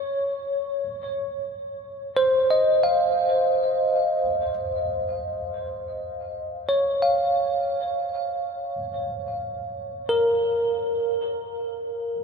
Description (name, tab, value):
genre	ambient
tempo	free time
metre	none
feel	none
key	unclear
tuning	A4 = 440 Hz
part	bell-like tine electric piano	solo	0.0-12.2 s	Bb4 to F5	-22 LUFS	equal	diffuse ambient delay
room	wet huge ambient reverb, RT60 8.8 s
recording	none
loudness	-22 LUFS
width	side -5 dB against mid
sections	0.0-12.2 A section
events	none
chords	0.0 Cmadd11; 4.4 Db